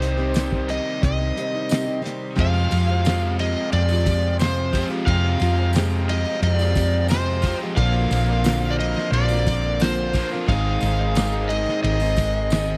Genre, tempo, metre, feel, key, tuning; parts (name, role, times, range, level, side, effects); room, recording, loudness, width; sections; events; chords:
folk rock and heartland rock; 89 BPM; 4/4; straight; F dorian; A4 = 443 Hz
overdriven slide guitar; melody; 0.0-12.8 s; C5 to F5; -28 LUFS; equal
picked plugged-in steel-string acoustic guitar; accompaniment; 0.0-12.8 s; F2 to Ab4; -31 LUFS; equal
warm upright piano; accompaniment; 0.0-12.2 s; Eb4 to D6; -41 LUFS; equal
accordion; sustained chords; 0.0-12.8 s; G4 to C6; -38 LUFS; equal
overdriven electric guitar; riff; 0.0-12.8 s; F2 to Ab4; -31 LUFS; equal; spring reverb
hollow-body short-scale fingered electric bass; bass; 0.0-12.8 s; Ab1 to F2; -24 LUFS; equal
cloth-damped thuddy drum kit; drums; 0.0-12.7 s; hi-hat, kick drum, ride cymbal, snare drum; -29 LUFS; equal
tambourine; percussion; 0.3-12.8 s; -44 LUFS; equal
little or no reverb; dry, close 1970s-style studio recording; -21 LUFS; mono
0.0-2.4 A section; 2.4-12.8 B section
0.0 Cm; 2.4 Fmadd9; 7.8 Bbadd9; 10.5 Ab